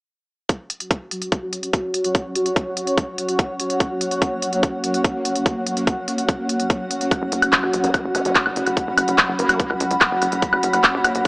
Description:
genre	psychedelic trance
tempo	145 BPM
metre	4/4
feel	straight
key	F# major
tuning	A4 = 440 Hz
part	pulsing gated texture	sustained chords	1.1-11.3 s	F#3 to F#4	-27 LUFS	equal	chorus, built-in reverb, sidechain pumping
part	electronic kick drum	drums	0.5-11.3 s	none	-20 LUFS	equal	none
part	techno drum kit	drums	0.5-11.3 s	handclaps, hi-hat, woodblock	-20 LUFS	equal	none
part	granular cloud pad	texture	1.6-11.3 s	C#4 to B5	-23 LUFS	equal	built-in reverb, sidechain pumping
part	tight sequencer bass	bass	7.2-11.2 s	F#1 to C#2	-27 LUFS	equal	none
part	vowel-sweep wobble bass	second line	7.8-9.7 s	A#3 to C#4	-30 LUFS	equal	chorus, sidechain pumping, high-pass filter, tape echo
room	moderate lush hall reverb, RT60 1.9 s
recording	small speaker sound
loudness	-18 LUFS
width	side -28 dB against mid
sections	0.5-11.3 A section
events	filter sweep on synth texture 0.5-11.3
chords	0.5 F#5

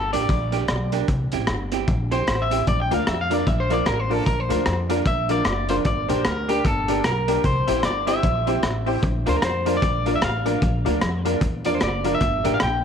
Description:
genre	ska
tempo	151 BPM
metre	4/4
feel	swing 60% on 8ths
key	unclear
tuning	A4 = 441 Hz
part	electric guitar at the edge of break-up	melody	0.0-12.8 s	G4 to G5	-25 LUFS	left 1 dB	none
part	upright bass	bass	0.0-12.8 s	F#1 to F2	-26 LUFS	equal	none
part	vintage hollow-body jazz guitar	accompaniment	0.1-12.6 s	F3 to G4	-28 LUFS	right 13 dB	slapback echo
part	crunchy breakbeat drum kit	drums	0.1-12.7 s	hi-hat, kick drum, rim click	-25 LUFS	equal	slapback echo
part	honky-tonk upright piano	stabs	2.9-12.6 s	D4 to C5	-27 LUFS	left 12 dB	none
room	light reverb, studio reverb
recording	1960s-style stereo with parts hard left and right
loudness	-19 LUFS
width	side -7 dB against mid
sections	0.0-12.8 A section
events	clean electric guitar solo 0.0-12.8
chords	0.0 Gm; 1.1 C; 2.7 Bb; 5.9 Gm; 7.4 C; 9.0 Bb; 12.2 Gm

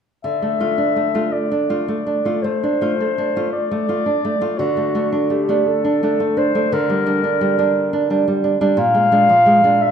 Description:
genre	romantic duo for clarinet and classical guitar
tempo	54-60 BPM (dotted quarters)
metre	12/8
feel	rubato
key	D minor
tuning	A4 = 440 Hz
part	mellow clarinet	melody	0.2-9.9 s	F#4 to F5	-18 LUFS	left 3 dB	none
part	nylon-string guitar	accompaniment	0.2-9.9 s	Bb2 to F4	-18 LUFS	right 3 dB	none
room	wet recital hall reverb, RT60 1.4 s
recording	recorded in a church or concert hall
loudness	-15 LUFS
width	side -7 dB against mid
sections	0.2-9.9 A section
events	none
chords	0.2 Dm; 4.6 D; 6.7 Gm/D; 8.8 Bb7

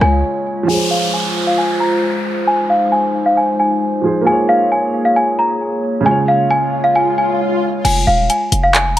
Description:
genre	hip hop, trap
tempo	134 BPM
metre	4/4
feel	half-time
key	F minor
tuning	A4 = 440 Hz
part	small celesta	melody	0.0-9.0 s	F5 to Bb5	-16 LUFS	equal	low-pass filter
part	warm concert grand piano	accompaniment	0.0-7.9 s	Db3 to Db5	-20 LUFS	right 3 dB	low-pass filter
part	glass harmonica	sustained chords	0.0-7.8 s	Ab3 to Db5	-21 LUFS	left 1 dB	low-pass filter
part	hard-hitting 808-style bass	bass	0.0-0.2, 7.8-9.0 s	Eb1 to Db2	-16 LUFS	equal	none
part	trap drum kit	drums	0.0-0.1, 7.8-9.0 s	crash cymbal, handclaps, hi-hat, rim click	-18 LUFS	left 1 dB	none
part	downlifter and swell	sound effects	0.7-7.8 s	none	-22 LUFS	left 2 dB	none
room	light reverb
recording	none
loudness	-13 LUFS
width	side -13 dB against mid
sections	0.7-7.8 A section; 7.8-9.0 B section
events	break 0.2-0.7; filter sweep 0.7-7.8; swell 6.4-7.8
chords	0.0 Db; 0.7 Fm; 4.3 Bbm7; 6.1 Db; 7.8 Fm

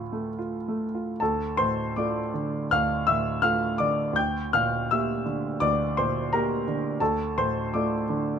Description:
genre	classical, romantic character piece for solo piano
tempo	70-89 BPM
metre	4/4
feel	rubato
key	D minor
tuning	A4 = 440 Hz
part	clear concert grand piano	solo	0.0-8.4 s	D2 to G6	-24 LUFS	equal	none
room	little or no reverb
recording	close, detailed microphones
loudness	-24 LUFS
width	side -7 dB against mid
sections	0.0-1.2 A section; 1.2-8.4 A section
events	none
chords	0.0 Dm; 4.2 Gm/D; 7.0 Dm

